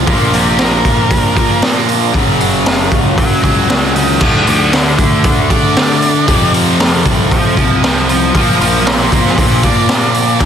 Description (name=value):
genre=quiet-loud alternative rock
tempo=116 BPM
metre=4/4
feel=straight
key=unclear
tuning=A4 = 439 Hz
part: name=electric guitar through a small old amp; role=arpeggios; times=0.0-4.2 s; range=F#2 to F#4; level=-21 LUFS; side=right 2 dB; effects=analog chorus, analog delay
part: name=cranked stack guitar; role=riff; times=0.0-10.5 s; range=F2 to D4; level=-17 LUFS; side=left 14 dB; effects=overdrive
part: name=distorted electric guitar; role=riff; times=0.0-10.5 s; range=F2 to D4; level=-17 LUFS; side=right 16 dB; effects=overdrive
part: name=fuzz picked electric bass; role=bass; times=0.0-10.5 s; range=F#1 to F3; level=-18 LUFS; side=equal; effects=overdrive
part: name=octave-fuzz lead guitar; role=melody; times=0.1-10.4 s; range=G4 to F#5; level=-17 LUFS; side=equal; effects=distortion, analog delay
part: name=raw garage drum kit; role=drums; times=0.1-10.5 s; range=crash cymbal, hi-hat, kick drum, snare drum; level=-13 LUFS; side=equal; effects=none
part: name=dark chamber string section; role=sustained chords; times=4.2-10.5 s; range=C3 to Bb4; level=-28 LUFS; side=left 2 dB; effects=none
room=little or no reverb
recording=dense, heavily limited modern master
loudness=-9 LUFS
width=side -8 dB against mid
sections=0.0-10.5 A section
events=lead electric guitar solo 0.0-10.5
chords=0.1 Bb; 2.1 F#; 4.2 D; 6.3 F; 8.3 Bb